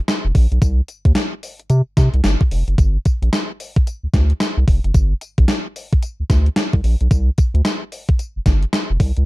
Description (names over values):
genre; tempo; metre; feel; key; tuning
R&B, new jack swing; 111 BPM; 4/4; swing 61% on 16ths; G minor; A4 = 440 Hz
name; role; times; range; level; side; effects
gated 80s digital drum machine; drums; 0.1-9.3 s; hi-hat, kick drum, snare drum, tambourine; -16 LUFS; equal; gated reverb, gated reverb snare, overdrive
round analog bass; bass; 0.2-9.2 s; F1 to C3; -16 LUFS; equal; none
room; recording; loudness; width
little or no reverb; dark, warm production, faint mains hum; -15 LUFS; side -20 dB against mid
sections
0.0-9.3 A section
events
none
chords
none